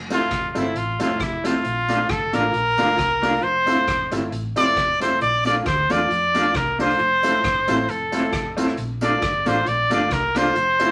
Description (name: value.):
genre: ska.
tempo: 135 BPM.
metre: 4/4.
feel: swing 55% on 8ths.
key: unclear.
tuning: A4 = 442 Hz.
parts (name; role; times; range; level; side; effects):
hollow-body short-scale fingered electric bass; bass; 0.0-10.9 s; E1 to F2; -34 LUFS; equal; none.
bright trumpet; melody; 0.1-10.9 s; E4 to D5; -22 LUFS; equal; none.
mellow electric guitar; accompaniment; 0.1-10.9 s; A3 to F4; -28 LUFS; equal; tremolo, analog delay.
clear upright piano; stabs; 0.1-10.9 s; Bb3 to A4; -29 LUFS; equal; none.
street-band drum kit; drums; 0.1-10.9 s; hi-hat, kick drum, rim click; -34 LUFS; equal; none.
tambourine; percussion; 0.1-10.9 s; none; -45 LUFS; equal; none.
room: wet small room reverb, RT60 0.5 s.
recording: vinyl crackle.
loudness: -21 LUFS.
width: mono.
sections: 0.0-10.9 A section.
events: trumpet solo 0.0-10.9.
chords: 0.0 Fmaj7; 1.6 Bbmaj7; 3.4 Fmaj7; 5.2 Bbmaj7; 7.0 Fmaj7; 8.8 Bbmaj7.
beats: 0.31 0.76 1.20 | 1.65 2.09 2.54 2.99 | 3.43 3.88 4.32 4.77 | 5.21 5.66 6.10 6.55 | 7.00 7.44 7.89 8.33 | 8.78 9.22 9.67 10.11 | 10.56.